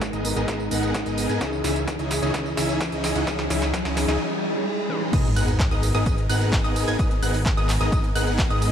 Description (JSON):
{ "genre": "EDM, festival progressive house", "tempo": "129 BPM", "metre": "4/4", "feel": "straight", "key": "G# minor", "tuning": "A4 = 442 Hz", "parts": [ { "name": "electric guitar at the edge of break-up", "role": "accompaniment", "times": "0.0-5.1 s", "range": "E3 to B4", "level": "-30 LUFS", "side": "equal", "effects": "spring reverb, sidechain pumping, ping-pong delay" }, { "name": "fat analog bass", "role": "bass", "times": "0.0-8.7 s", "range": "G#1 to G#2", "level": "-26 LUFS", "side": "equal", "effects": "sidechain pumping" }, { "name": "big-room dance drum kit", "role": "drums", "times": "0.0-8.7 s", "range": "crash cymbal, handclaps, hi-hat, ride cymbal, snare drum, tambourine, toms", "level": "-30 LUFS", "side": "right 1 dB", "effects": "overdrive, high-pass filter on hats, high-pass filter on snare, high-pass filter on perc, high-pass filter on toms, high-pass filter on cymbals, high-pass filter on room" }, { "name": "electronic kick drum", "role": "drums", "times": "0.0-8.5 s", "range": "none", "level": "-24 LUFS", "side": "equal", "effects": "overdrive, high-pass filter on kick, high-pass filter on room" }, { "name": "riser, swell and sub drop", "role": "sound effects", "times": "0.7-7.0 s", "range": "none", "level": "-31 LUFS", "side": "equal", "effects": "none" }, { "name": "supersaw chords", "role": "riff", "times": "0.1-8.7 s", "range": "B3 to G#5", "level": "-27 LUFS", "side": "equal", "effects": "sidechain pumping, low-pass filter, ping-pong delay" }, { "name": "wide unison pluck", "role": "arpeggios", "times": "5.1-8.7 s", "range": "D#6 to G#6", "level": "-30 LUFS", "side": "right 1 dB", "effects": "sidechain pumping, ping-pong delay" } ], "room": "light reverb", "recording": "dark, warm production", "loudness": "-20 LUFS", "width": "side -9 dB against mid", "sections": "0.0-5.1 A section; 5.1-8.7 B section", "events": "build-up 0.0-5.1; drum fill 0.0-4.2, 4.9; riser 0.7-5.1; break 4.2-5.1; swell 4.2-5.1; drop 5.1-8.7; impact 5.1-7.0", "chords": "0.0 G#madd9; 1.4 C#madd9; 5.1 G#madd9", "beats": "0.01 0.48 0.94 | 1.41 1.88 2.34 2.81 | 3.27 3.74 4.20 4.67 | 5.13 5.60 6.06 6.53 | 6.99 7.46 7.92 8.39" }